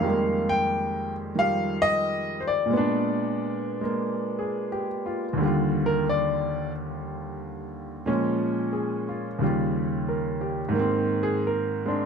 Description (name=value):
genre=solo jazz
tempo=90 BPM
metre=4/4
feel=swing 68% on 8ths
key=Eb major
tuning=A4 = 439 Hz
part: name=clear baby grand piano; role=solo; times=0.0-12.1 s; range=Eb2 to G5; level=-24 LUFS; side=equal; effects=none
room=light reverb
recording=dark, warm production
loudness=-24 LUFS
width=side -6 dB against mid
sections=0.0-5.4 A section; 5.4-12.1 B section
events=grand piano solo 5.4-12.1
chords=0.0 Fm11; 2.7 Bb7b9; 5.4 Ebmaj9; 8.1 Bbm7; 9.4 Eb9; 10.7 Abadd9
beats=| 0.03 0.70 1.37 2.04 | 2.71 3.38 4.04 4.71 | 5.38 6.05 6.72 7.39 | 8.06 8.73 9.40 10.07 | 10.74 11.41